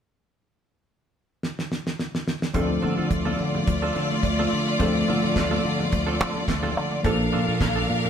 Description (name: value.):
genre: disco.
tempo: 107 BPM.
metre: 4/4.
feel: straight.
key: D minor.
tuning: A4 = 440 Hz.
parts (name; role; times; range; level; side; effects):
damped 70s drum kit; drums; 1.4-7.8 s; handclaps, hi-hat, kick drum, snare drum; -27 LUFS; right 1 dB; none.
clear studio string section; second line; 2.5-8.1 s; A3 to F5; -25 LUFS; left 1 dB; none.
semi-hollow electric guitar; accompaniment; 2.5-8.1 s; C4 to A4; -32 LUFS; right 4 dB; spring reverb.
tine electric piano; accompaniment; 2.5-8.1 s; F3 to A4; -27 LUFS; left 1 dB; none.
fingered electric bass with an envelope filter; bass; 2.5-8.1 s; Bb1 to D3; -28 LUFS; equal; none.
congas; percussion; 2.6-8.1 s; none; -35 LUFS; left 3 dB; none.
room: wet stone room reverb, RT60 1.3 s.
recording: band playing live in one room.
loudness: -22 LUFS.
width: side -8 dB against mid.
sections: 0.3-2.6 A section; 2.6-8.1 B section.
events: drum fill 1.4-2.6.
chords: 0.3 N.C.; 2.6 Dm7; 7.0 Bbmaj7.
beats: | 0.30 0.86 1.43 1.99 | 2.55 3.11 3.67 4.24 | 4.80 5.36 5.92 6.49 | 7.05 7.61.